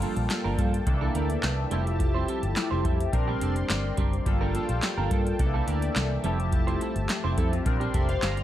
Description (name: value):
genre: early-eighties boogie funk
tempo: 106 BPM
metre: 4/4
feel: straight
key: unclear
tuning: A4 = 440 Hz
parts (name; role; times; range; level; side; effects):
- chorused polysynth; accompaniment; 0.0-8.4 s; Eb3 to Bb5; -30 LUFS; left 2 dB; phaser
- brassy analog pad; sustained chords; 0.0-8.4 s; G4 to C6; -37 LUFS; left 1 dB; chorus
- clean electric guitar; riff; 0.0-8.4 s; F3 to C5; -34 LUFS; right 7 dB; lush chorus
- vintage muted fingered electric bass; bass; 0.0-8.4 s; F1 to G2; -28 LUFS; equal; none
- electro analog drum machine; drums; 0.0-8.4 s; handclaps, hi-hat, kick drum, snare drum; -28 LUFS; equal; none
room: digital ambience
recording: dark, warm production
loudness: -24 LUFS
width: side -12 dB against mid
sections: 0.0-8.4 A section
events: none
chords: 0.0 Gm9; 0.9 C13; 1.7 Fmaj9; 3.1 Bb69; 4.3 Gm9; 5.4 C13; 6.2 Fmaj9; 7.7 Bb69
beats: 0.30 0.87 1.43 | 2.00 2.56 3.13 3.70 | 4.26 4.83 5.39 5.96 | 6.53 7.09 7.66 8.22